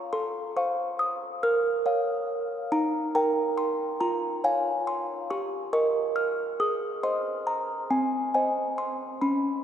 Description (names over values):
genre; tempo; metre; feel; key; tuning
classical, lullaby for music box; 46 BPM (dotted quarters); 6/8; straight; Ab major; A4 = 440 Hz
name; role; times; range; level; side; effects
music box; solo; 0.0-9.6 s; C4 to F6; -25 LUFS; equal; none
room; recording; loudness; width
wet cathedral reverb, RT60 5.2 s; recorded in a church or concert hall; -25 LUFS; side -9 dB against mid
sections
0.0-9.6 A section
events
none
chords
0.1 F/A; 1.4 Bbm; 2.7 Eb; 4.0 Db/F; 5.3 Eb/G; 6.6 Ab; 7.9 Ab/C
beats
| 0.13 1.42 | 2.71 4.01 | 5.30 6.59 | 7.90 9.22